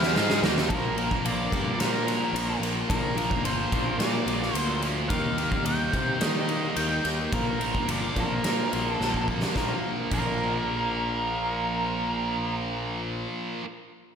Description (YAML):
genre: quiet-loud alternative rock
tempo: 108 BPM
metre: 4/4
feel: straight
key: Bb major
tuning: A4 = 440 Hz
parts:
  - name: octave-fuzz lead guitar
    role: melody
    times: 0.0-12.6 s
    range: Bb4 to G5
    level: -31 LUFS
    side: equal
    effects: distortion, slapback echo, tape echo
  - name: cranked stack guitar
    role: riff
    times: 0.0-0.7 s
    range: Eb3 to Ab4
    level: -34 LUFS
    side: left 1 dB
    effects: overdrive, slapback echo
  - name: heavy high-gain guitar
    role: riff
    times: 0.0-13.7 s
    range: Bb2 to Ab4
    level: -30 LUFS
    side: right 1 dB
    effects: distortion
  - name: fuzz picked electric bass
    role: bass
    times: 0.0-13.3 s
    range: G1 to Eb3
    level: -32 LUFS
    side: equal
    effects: overdrive
  - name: big rock drum kit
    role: drums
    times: 0.0-10.3 s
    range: crash cymbal, kick drum, ride cymbal, snare drum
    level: -29 LUFS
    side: equal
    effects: none
  - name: electric guitar through a small old amp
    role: arpeggios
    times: 0.7-13.6 s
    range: Bb2 to Bb4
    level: -34 LUFS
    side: left 2 dB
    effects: analog chorus
room: moderate lush hall reverb, RT60 1.8 s, small room ambience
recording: big arena sound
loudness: -24 LUFS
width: side -7 dB against mid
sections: 0.7-9.6 A section; 9.6-11.8 B section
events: drum fill 0.0-0.7, 9.0-9.6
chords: 0.0 Bb5; 0.7 Bb; 5.1 Eb; 7.3 Bb